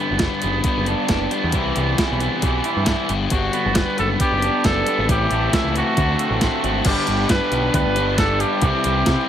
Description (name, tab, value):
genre	indie rock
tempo	136 BPM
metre	4/4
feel	straight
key	G major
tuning	A4 = 442 Hz
part	crunchy overdriven guitar	riff	0.0-9.3 s	G2 to G4	-23 LUFS	left 7 dB	tape echo
part	raw garage guitar	riff	0.0-9.3 s	E3 to G4	-24 LUFS	right 7 dB	overdrive, wide subtle chorus, tape echo
part	growling picked electric bass	bass	0.1-9.2 s	F#1 to C3	-24 LUFS	equal	overdrive
part	clean 12-bit digital drum machine	drums	0.2-9.2 s	crash cymbal, hi-hat, kick drum, snare drum	-22 LUFS	equal	none
part	clear trumpet	melody	3.3-9.3 s	E4 to B4	-22 LUFS	equal	tape echo
room	light reverb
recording	echo-heavy mix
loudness	-17 LUFS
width	side -10 dB against mid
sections	0.0-6.9 A section; 6.9-9.3 B section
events	none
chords	0.0 Gmaj7; 1.5 Cmaj7; 3.1 Gmaj7; 5.1 Am7; 6.0 D7; 6.9 G; 8.6 C